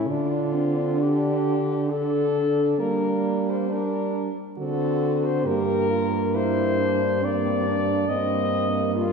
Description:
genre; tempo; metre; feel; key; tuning
classical, lyrical piece for horn quartet; 68 BPM; 3/4; rubato; unclear; A4 = 436 Hz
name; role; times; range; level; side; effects
warm French horn; melody; 0.0-9.1 s; F4 to Eb5; -26 LUFS; left 5 dB; none
warm French horn; second line; 0.0-9.1 s; Bb3 to G4; -28 LUFS; right 5 dB; none
dark French horn; accompaniment; 0.0-9.1 s; Bb3 to D4; -28 LUFS; equal; none
warm French horn; bass; 0.0-9.1 s; G2 to G3; -27 LUFS; right 3 dB; none
room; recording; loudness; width
wet concert hall reverb, RT60 1.8 s; heard from further back in the room; -21 LUFS; side -5 dB against mid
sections
0.0-9.1 A section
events
none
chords
0.1 Dm; 2.8 Gm; 4.6 D7; 5.5 Gm

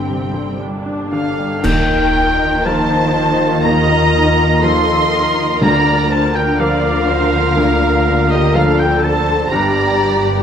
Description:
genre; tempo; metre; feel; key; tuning
cinematic, emotional film score for orchestra; 61 BPM; 4/4; rubato; unclear; A4 = 440 Hz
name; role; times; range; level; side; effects
muted symphonic violin section; melody; 0.0-10.4 s; Eb5 to C6; -23 LUFS; left 1 dB; none
muted symphonic violin section; second line; 0.0-10.4 s; G4 to Eb5; -23 LUFS; left 1 dB; none
bright concert grand piano; accompaniment; 0.0-10.4 s; G1 to Bb4; -20 LUFS; equal; none
muted symphonic viola section; accompaniment; 0.0-10.4 s; C4 to D5; -23 LUFS; equal; none
dark French horn section; sustained chords; 0.0-10.4 s; Bb3 to G4; -22 LUFS; left 7 dB; none
muted symphonic cello section; bass; 0.0-10.4 s; G2 to G3; -21 LUFS; equal; none
muted symphonic double bass section; bass; 0.0-10.4 s; G1 to Eb2; -21 LUFS; right 2 dB; none
clear oboe; second line; 1.1-10.2 s; Eb5 to C6; -20 LUFS; right 2 dB; none
mellow hollow large flute ensemble; second line; 1.1-10.4 s; Eb5 to C6; -22 LUFS; left 2 dB; none
clash cymbals and concert bass drum; percussion; 1.6-3.6 s; none; -25 LUFS; equal; none
timpani; percussion; 5.6-7.0 s; D3; -21 LUFS; equal; none
room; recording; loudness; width
light reverb; close, detailed microphones; -12 LUFS; side -8 dB against mid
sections
0.0-1.6 A section; 1.6-10.4 B section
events
band accent 1.6-2.7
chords
0.0 Gm; 1.6 Ebadd9; 5.6 Bb/D; 9.5 Gm

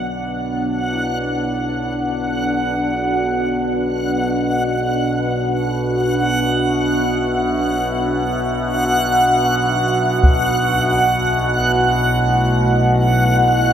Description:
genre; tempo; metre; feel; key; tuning
dark ambient drone; free time; none; none; B minor; A4 = 439 Hz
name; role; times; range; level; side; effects
deep dark ambient pad; sustained chords; 0.0-13.7 s; B2 to E5; -21 LUFS; equal; chorus, built-in reverb
gamelan-type bronze metallophone; arpeggios; 0.0-6.5 s; D3 to E4; -36 LUFS; left 2 dB; none
overtone-sweeping drone; drone; 0.0-13.7 s; B1 to B2; -21 LUFS; equal; chorus, built-in reverb
backwards swelling texture; texture; 0.0-13.7 s; F#5; -19 LUFS; right 1 dB; built-in reverb
taiko ensemble; percussion; 10.2-10.4 s; none; -17 LUFS; equal; low-pass filter on perc
room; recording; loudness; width
wet huge ambient reverb, RT60 8.0 s; none; -15 LUFS; side -9 dB against mid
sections
0.0-13.7 A section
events
fade-in on synth drone 0.0-13.7; fade-in on ambient pad 0.0-13.7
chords
0.0 Bm; 10.2 Dadd9/B

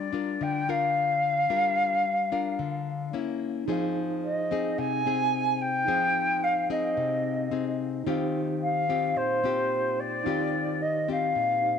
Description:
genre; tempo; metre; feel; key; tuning
bossa nova; 110 BPM; 4/4; straight; unclear; A4 = 440 Hz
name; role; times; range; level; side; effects
mellow concert flute; melody; 0.0-11.8 s; C5 to Ab5; -26 LUFS; equal; none
nylon-string guitar; accompaniment; 0.0-11.8 s; Bb2 to Bb4; -30 LUFS; left 8 dB; none
mellow tine electric piano; accompaniment; 3.7-11.8 s; Eb4 to F5; -35 LUFS; right 13 dB; medium stereo tremolo
room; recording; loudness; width
wet spring reverb, RT60 2.8 s; 1960s-style stereo with parts hard left and right; -25 LUFS; side -7 dB against mid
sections
0.0-11.8 A section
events
tine electric piano fill 11.6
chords
0.0 Gm7; 3.1 Bbdim; 3.7 Fm7; 8.1 Eb69

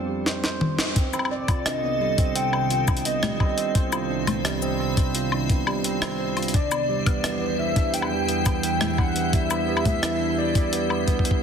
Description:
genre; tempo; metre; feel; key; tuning
IDM; 86 BPM; 4/4; straight; unclear; A4 = 440 Hz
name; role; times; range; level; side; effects
tine electric piano; arpeggios; 0.0-11.4 s; G3 to C5; -28 LUFS; right 4 dB; tape echo, shimmer reverb
jungle sampler-style drum kit; drums; 0.3-11.4 s; cabasa, congas, hi-hat, rim click, snare drum, toms, woodblock; -27 LUFS; left 3 dB; ping-pong delay
icy glass pad; sustained chords; 1.2-11.4 s; C2 to B5; -28 LUFS; right 1 dB; chorus, built-in reverb, shimmer reverb
electronic kick drum; drums; 1.0-11.4 s; none; -22 LUFS; equal; none
warbly nostalgic lead; melody; 1.3-11.0 s; C5 to G5; -28 LUFS; left 2 dB; tremolo, lush chorus, ping-pong delay, shimmer reverb
room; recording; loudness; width
moderate plate reverb, RT60 2.0 s; dense, heavily limited modern master; -21 LUFS; side -7 dB against mid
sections
1.0-11.4 A section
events
break 0.0-1.0; drum fill 0.3-1.0; band accent 0.8-1.1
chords
0.0 F5; 1.0 Cm6; 6.5 Em7

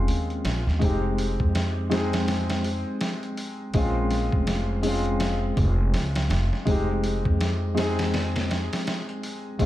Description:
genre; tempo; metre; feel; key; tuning
trip hop; 82 BPM; 4/4; swing 60% on 16ths; F minor; A4 = 440 Hz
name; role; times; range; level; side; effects
felt-muted upright piano; accompaniment; 0.0-9.7 s; Ab3 to Ab4; -27 LUFS; left 1 dB; harmonic tremolo, tape echo
upright bass; bass; 0.0-9.7 s; F1 to F2; -26 LUFS; equal; none
trip hop sampler-style drum kit; drums; 0.1-9.7 s; hi-hat, kick drum, snare drum; -28 LUFS; equal; overdrive, studio reverb
room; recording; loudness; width
light reverb; none; -22 LUFS; side -14 dB against mid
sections
0.0-9.7 A section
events
none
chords
0.0 Bbm7; 0.8 Fm7; 3.7 Bbm7; 6.7 Fm7

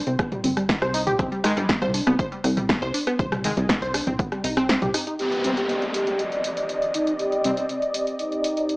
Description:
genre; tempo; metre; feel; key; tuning
melodic techno; 120 BPM; 4/4; straight; C harmonic minor; A4 = 440 Hz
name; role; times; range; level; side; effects
wide unison pluck; arpeggios; 0.1-5.1 s; G3 to C5; -25 LUFS; equal; cassette tape, sidechain pumping, analog delay
plucky analog bass; bass; 0.1-4.9 s; G1 to C2; -26 LUFS; equal; sidechain pumping
punchy analog drum machine; drums; 0.1-8.8 s; hi-hat, rim click, snare drum, toms; -26 LUFS; equal; none
electronic kick drum; drums; 0.2-4.3 s; none; -27 LUFS; equal; none
analog synth brass; stabs; 1.4-7.5 s; Ab2 to C4; -28 LUFS; left 1 dB; chorus, sidechain pumping, analog delay
expressive synth lead; melody; 5.2-8.8 s; Eb4 to G4; -26 LUFS; equal; chorus, sidechain pumping, tape echo
lush unison pad; sustained chords; 5.2-8.8 s; C4 to Eb5; -25 LUFS; equal; chorus, sidechain pumping
downlifter; sound effects; 5.2-8.8 s; none; -30 LUFS; equal; none
room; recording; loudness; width
moderate digital room reverb, RT60 1.0 s, digital ambience; dry, gritty hardware recording, cassette tape, small speaker sound; -21 LUFS; side -25 dB against mid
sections
0.0-5.2 A section; 5.2-8.8 B section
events
kick drops out 4.7-5.2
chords
0.0 C5; 1.2 Abmaj7 (rootless); 5.2 Cm

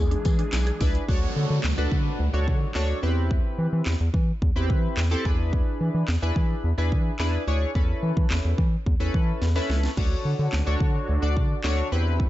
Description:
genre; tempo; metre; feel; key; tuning
dance-pop; 108 BPM; 4/4; straight; unclear; A4 = 440 Hz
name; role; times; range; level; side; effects
soft octave-layered synth lead; melody; 0.0-0.8 s; G#4; -34 LUFS; left 4 dB; chorus, tremolo, tape echo
filtered supersaw swell; sustained chords; 0.0-1.1, 10.0-12.3 s; D3 to B4; -37 LUFS; right 1 dB; sidechain pumping
mallet-like synth pluck; arpeggios; 0.0-0.9 s; D4 to D5; -39 LUFS; right 4 dB; chorus, sidechain pumping, tape echo
round analog bass; bass; 0.0-12.3 s; B1 to E3; -24 LUFS; equal; sidechain pumping
house drum kit; drums; 0.1-12.3 s; crash cymbal, handclaps, hi-hat, kick drum, snare drum; -25 LUFS; equal; none
tambourine; percussion; 0.3-0.9 s; none; -42 LUFS; left 8 dB; none
chorused retro synth keys; accompaniment; 0.8-12.3 s; C4 to D5; -30 LUFS; left 1 dB; sidechain pumping
downlifter; sound effects; 1.1-5.5 s; none; -36 LUFS; right 1 dB; none
room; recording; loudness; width
little or no reverb; dark, warm production, nothing above 7.9 kHz; -22 LUFS; side -15 dB against mid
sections
0.0-1.1 A section; 1.1-12.3 B section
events
drum fill 9.4-10.0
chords
0.0 E7; 1.1 Dmaj7; 3.0 Cmaj7/E; 5.3 E7; 7.8 Aadd9/E; 10.0 Dmaj7

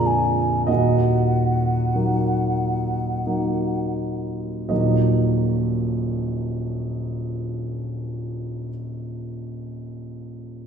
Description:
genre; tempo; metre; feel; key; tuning
classical, romantic duo for flute and grand piano; 40-51 BPM; 3/4; rubato; Eb minor; A4 = 440 Hz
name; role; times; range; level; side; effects
mellow hollow concert flute; melody; 0.0-3.9 s; Gb5 to Ab5; -26 LUFS; equal; none
warm concert grand piano; accompaniment; 0.0-10.7 s; Bb0 to Eb5; -22 LUFS; equal; none
room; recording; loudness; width
wet scoring stage reverb, RT60 1.6 s; heard from further back in the room; -20 LUFS; side -7 dB against mid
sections
0.0-4.7 A section; 4.7-8.9 B section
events
slowing down 0.0-4.7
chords
0.0 Bb7; 0.7 Ebm

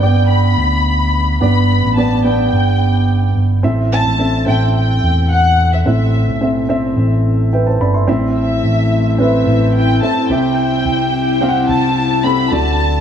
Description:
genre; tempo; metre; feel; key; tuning
piano-driven pop; 108 BPM; 4/4; straight; unclear; A4 = 441 Hz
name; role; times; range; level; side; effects
dark studio violin section; melody; 0.0-13.0 s; E5 to B5; -18 LUFS; left 2 dB; diffuse ambient delay
dark upright piano; accompaniment; 0.0-13.0 s; G2 to C6; -17 LUFS; right 1 dB; none
picked electric bass; bass; 0.0-13.0 s; G1 to E2; -15 LUFS; equal; none
airy breathy pad; sustained chords; 8.5-13.0 s; F#3 to E4; -19 LUFS; left 3 dB; chorus, phaser
room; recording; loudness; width
moderate lush hall reverb, RT60 2.3 s; dreamy mix soaked in reverb; -12 LUFS; side -8 dB against mid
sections
0.0-8.1 A section; 8.1-13.0 B section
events
upright piano fill 7.2-8.1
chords
0.0 G; 3.6 Am; 10.3 C

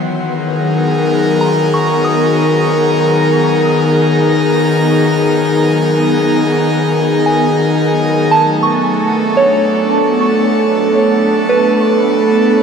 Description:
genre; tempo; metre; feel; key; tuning
ambient; 56 BPM; 4/4; straight; unclear; A4 = 439 Hz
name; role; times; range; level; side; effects
airy breathy pad; sustained chords; 0.0-12.6 s; D#3 to A#5; -12 LUFS; left 1 dB; chorus
soft synth bell; arpeggios; 0.0-12.6 s; B4 to D#6; -18 LUFS; right 1 dB; chorus, diffuse ambient delay
bowed-like drone; drone; 0.0-12.6 s; F#3 to B3; -20 LUFS; right 1 dB; built-in reverb, phaser
glass harmonica; texture; 0.0-12.6 s; F#5; -29 LUFS; equal; none
room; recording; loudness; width
wet shimmer reverb, RT60 8.5 s; none; -10 LUFS; side -6 dB against mid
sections
0.0-12.6 A section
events
fade-out on glass harmonica 0.0-12.6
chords
0.0 D#sus4; 8.3 Bm9/F#

